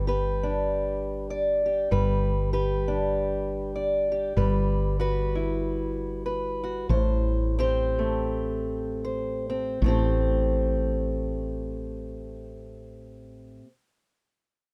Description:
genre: acoustic folk duo or small band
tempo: 74-98 BPM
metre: 4/4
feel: swing 58% on 8ths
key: A dorian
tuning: A4 = 440 Hz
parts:
  - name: fingerpicked acoustic archtop guitar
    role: accompaniment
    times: 0.0-13.7 s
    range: A2 to D5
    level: -30 LUFS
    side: equal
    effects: none
  - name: woody fretless electric bass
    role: bass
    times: 0.0-13.6 s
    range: G1 to A1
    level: -30 LUFS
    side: equal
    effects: none
room: little or no reverb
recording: dry, close 1970s-style studio recording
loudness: -27 LUFS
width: mono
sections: 0.0-9.8 A section; 9.8-13.1 B section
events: slowing down 4.4-9.8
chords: 0.0 G; 4.4 Emadd9/G; 6.9 Am7

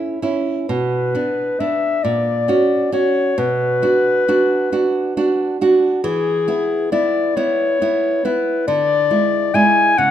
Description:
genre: romantic duo for clarinet and classical guitar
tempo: 45 BPM (dotted quarters)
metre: 6/8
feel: rubato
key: unclear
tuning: A4 = 441 Hz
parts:
  - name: dark clarinet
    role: melody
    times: 0.0-10.1 s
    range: G#4 to G#5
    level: -17 LUFS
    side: left 4 dB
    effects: none
  - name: nylon-string guitar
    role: accompaniment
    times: 0.0-10.1 s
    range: A#2 to F#4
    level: -18 LUFS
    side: right 3 dB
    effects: none
room: moderate recital hall reverb, RT60 1.5 s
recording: minimal, uncompressed stereo recording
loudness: -15 LUFS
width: side -10 dB against mid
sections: 0.0-10.1 A section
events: none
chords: 0.0 A; 0.7 Bm; 2.0 F#/A#; 3.4 Bm; 6.0 E; 8.7 E7/D

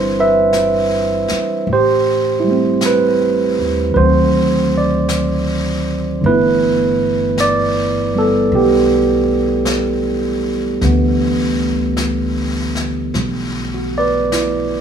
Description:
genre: jazz ballad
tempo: 52 BPM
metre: 4/4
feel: swing 68% on 8ths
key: G major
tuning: A4 = 439 Hz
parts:
  - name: bright tine electric piano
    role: accompaniment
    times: 0.0-14.8 s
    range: D3 to E5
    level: -14 LUFS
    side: right 2 dB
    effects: none
  - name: upright bass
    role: bass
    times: 0.0-14.8 s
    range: G1 to Eb2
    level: -22 LUFS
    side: left 1 dB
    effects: none
  - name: jazz brush drum kit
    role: drums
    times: 0.5-14.8 s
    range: brushed snare drum, hi-hat, snare drum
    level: -27 LUFS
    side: left 3 dB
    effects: none
room: light reverb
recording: small room ambience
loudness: -13 LUFS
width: side -8 dB against mid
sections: 0.0-14.8 A section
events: none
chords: 0.0 Cmaj9; 1.7 Am9; 4.0 D7b9; 6.2 G69

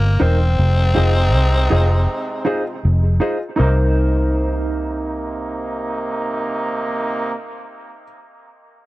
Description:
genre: reggae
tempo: 80 BPM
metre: 4/4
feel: straight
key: C minor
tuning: A4 = 440 Hz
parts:
  - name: raspy tenor saxophone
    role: melody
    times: 0.0-2.8 s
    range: Bb3 to C4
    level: -23 LUFS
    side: left 2 dB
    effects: dub echo
  - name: muted trombone section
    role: second line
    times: 0.0-7.3 s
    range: C3 to F4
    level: -25 LUFS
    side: right 2 dB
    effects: dub echo
  - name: warm upright piano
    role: stabs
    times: 0.0-8.0 s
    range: Eb4 to Eb5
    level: -27 LUFS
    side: left 4 dB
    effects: none
  - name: vintage muted fingered electric bass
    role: bass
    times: 0.0-8.0 s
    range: E1 to C2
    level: -16 LUFS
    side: equal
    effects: tube saturation
  - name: mellow electric guitar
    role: accompaniment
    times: 0.2-8.1 s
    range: Eb4 to C5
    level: -24 LUFS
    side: right 2 dB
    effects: lush chorus, dub echo
room: little or no reverb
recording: dry, close 1970s-style studio recording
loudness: -16 LUFS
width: side -18 dB against mid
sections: 0.0-3.6 A section; 3.6-6.6 B section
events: none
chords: 0.0 Cm7; 0.6 Fm7; 3.6 Cm7

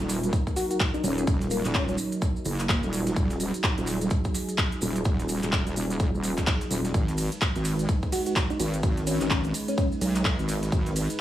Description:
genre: bass house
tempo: 127 BPM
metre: 4/4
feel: swing 60% on 16ths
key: Eb minor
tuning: A4 = 443 Hz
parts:
  - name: dark analog pad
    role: sustained chords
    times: 0.0-11.2 s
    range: Gb3 to Cb5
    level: -33 LUFS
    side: right 2 dB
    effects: chorus, sidechain pumping
  - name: wobble bass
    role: bass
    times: 0.0-11.1 s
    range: Eb1 to Cb2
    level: -27 LUFS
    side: equal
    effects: chorus, tube saturation, sidechain pumping
  - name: big-room dance drum kit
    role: drums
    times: 0.0-11.2 s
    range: handclaps, hi-hat, ride cymbal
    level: -31 LUFS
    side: equal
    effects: none
  - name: dusty soul sampler-style drum kit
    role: drums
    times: 0.0-11.2 s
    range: hi-hat, snare drum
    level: -42 LUFS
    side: right 1 dB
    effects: none
  - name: maracas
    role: percussion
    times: 0.0-11.2 s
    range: none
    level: -39 LUFS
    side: right 3 dB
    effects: none
  - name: electronic kick drum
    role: drums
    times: 0.3-10.8 s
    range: none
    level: -26 LUFS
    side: equal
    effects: none
  - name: soft struck synth lead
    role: melody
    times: 0.6-1.9, 8.1-9.9 s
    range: Bb3 to Gb4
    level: -31 LUFS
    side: left 2 dB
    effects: chorus, phaser, digital delay
room: little or no reverb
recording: small room ambience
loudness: -24 LUFS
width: side -13 dB against mid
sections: 0.0-11.2 A section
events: none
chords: 0.0 Ebm; 6.9 Abm

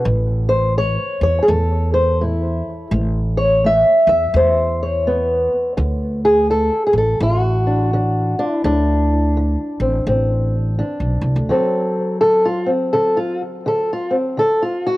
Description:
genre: acoustic country blues, solo or duo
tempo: 84 BPM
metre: 4/4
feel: swing 62% on 8ths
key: D mixolydian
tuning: A4 = 440 Hz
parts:
  - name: fingerpicked old ladder-braced acoustic guitar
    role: melody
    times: 0.0-15.0 s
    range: A2 to E5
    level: -16 LUFS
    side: equal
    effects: cassette tape, plate reverb, analog delay
  - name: upright bass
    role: bass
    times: 0.1-11.5 s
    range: A1 to E2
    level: -19 LUFS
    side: equal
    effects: none
room: moderate booth ambience, RT60 0.3 s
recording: home recording on cassette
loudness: -15 LUFS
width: side -17 dB against mid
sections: 0.0-11.5 A section; 11.5-15.0 B section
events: steel-string acoustic guitar solo 11.5-15.0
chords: 0.1 A; 5.8 D7

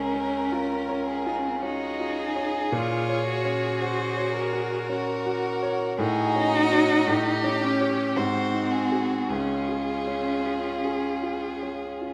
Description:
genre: classical, slow romantic movement for piano quartet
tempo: 51-55 BPM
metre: 3/4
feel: rubato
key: Db major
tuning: A4 = 440 Hz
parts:
  - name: rich violin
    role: melody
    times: 0.0-12.1 s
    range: F4 to Db5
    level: -34 LUFS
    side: equal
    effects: none
  - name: clear violin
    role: second line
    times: 0.0-12.1 s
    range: Gb4 to Bb4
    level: -36 LUFS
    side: equal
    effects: none
  - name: rich cello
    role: second line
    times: 0.0-12.1 s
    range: C4 to Gb4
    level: -30 LUFS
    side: equal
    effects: none
  - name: clear baby grand piano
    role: accompaniment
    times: 0.0-12.1 s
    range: Db2 to Db5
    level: -31 LUFS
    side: equal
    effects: none
room: wet scoring stage reverb, RT60 1.6 s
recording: none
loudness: -26 LUFS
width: mono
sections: 0.0-12.1 A section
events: none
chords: 0.0 Db; 2.7 Gb/Bb; 6.0 Gbm/A; 7.1 A7; 8.2 Ab7; 9.3 Db

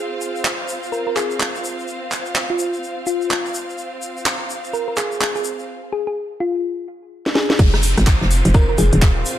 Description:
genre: bass house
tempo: 126 BPM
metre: 4/4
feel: swing 61% on 16ths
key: F minor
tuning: A4 = 439 Hz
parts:
  - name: thumb-piano-like synth pluck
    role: melody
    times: 0.0-9.0 s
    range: F4 to Bb4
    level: -24 LUFS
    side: left 1 dB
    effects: chorus, cassette tape, tape echo
  - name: clear studio string section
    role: texture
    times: 0.0-9.4 s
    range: C4 to F5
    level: -28 LUFS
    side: right 1 dB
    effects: sidechain pumping
  - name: tube shaker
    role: percussion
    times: 0.2-9.4 s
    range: none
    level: -32 LUFS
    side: left 3 dB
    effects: none
  - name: garage drum kit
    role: drums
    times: 0.5-9.4 s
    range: crash cymbal, handclaps, hi-hat, rim click, snare drum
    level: -22 LUFS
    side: equal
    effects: none
  - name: hollow knocking FM bass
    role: bass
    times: 7.6-9.2 s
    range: Eb1 to Ab1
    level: -16 LUFS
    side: equal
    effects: sidechain pumping
  - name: electronic kick drum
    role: drums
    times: 7.6-9.1 s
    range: none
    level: -17 LUFS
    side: equal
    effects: none
  - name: tambourine and snare drum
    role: drums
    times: 7.6-9.4 s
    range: none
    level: -32 LUFS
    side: right 1 dB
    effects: none
  - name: downlifter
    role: sound effects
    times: 7.6-9.4 s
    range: none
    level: -28 LUFS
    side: equal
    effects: none
room: light reverb, small room ambience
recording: none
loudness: -17 LUFS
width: side -12 dB against mid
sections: 0.0-7.6 A section; 7.6-9.4 B section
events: filter sweep on drum 0.0-7.6; drum fill 7.2-7.6; drop 7.6-9.4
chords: 0.0 F5

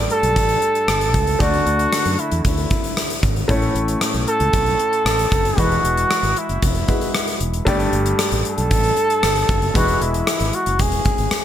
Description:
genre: 1980s-style pop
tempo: 115 BPM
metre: 4/4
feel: straight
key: unclear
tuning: A4 = 440 Hz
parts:
  - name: clear baby grand piano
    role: accompaniment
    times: 0.0-11.4 s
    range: G2 to D5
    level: -24 LUFS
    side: left 1 dB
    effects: none
  - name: fretless electric bass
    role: bass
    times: 0.0-11.3 s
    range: E1 to F#2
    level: -22 LUFS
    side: equal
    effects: none
  - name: breathy flugelhorn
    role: melody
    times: 0.1-11.4 s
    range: E4 to A4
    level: -20 LUFS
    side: equal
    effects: tape echo
  - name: gated 80s drum kit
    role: drums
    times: 0.1-11.4 s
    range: hi-hat, kick drum, rim click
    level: -21 LUFS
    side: equal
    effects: gated reverb
room: light reverb, small room ambience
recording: none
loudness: -16 LUFS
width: side -10 dB against mid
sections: 0.0-11.4 A section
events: none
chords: 0.0 Gsus2; 1.4 D; 3.5 A; 5.6 Eadd9; 7.7 Gsus2; 9.8 Eadd9

